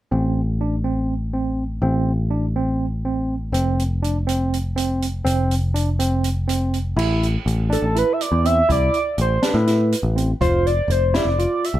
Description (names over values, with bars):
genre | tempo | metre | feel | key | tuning
progressive instrumental, band music in an uneven meter | 245 BPM (eighths) | 7/8 | straight | A minor | A4 = 441 Hz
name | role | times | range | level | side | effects
barky tine electric piano | arpeggios | 0.1-11.7 s | C4 to F4 | -24 LUFS | right 2 dB | medium stereo tremolo
picked electric bass | bass | 0.1-11.8 s | F1 to A2 | -20 LUFS | left 1 dB | none
open jazz drum kit | drums | 3.5-11.7 s | crash cymbal, hi-hat, kick drum, snare drum | -27 LUFS | right 1 dB | none
pulse-width lead | melody | 7.7-11.8 s | A4 to E5 | -20 LUFS | right 1 dB | chorus, digital delay
room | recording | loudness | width
light reverb | none | -18 LUFS | side -14 dB against mid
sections
0.1-7.0 A section; 7.0-11.8 B section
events
none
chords
0.1 Am; 3.5 F5; 7.0 Amadd9; 10.4 F5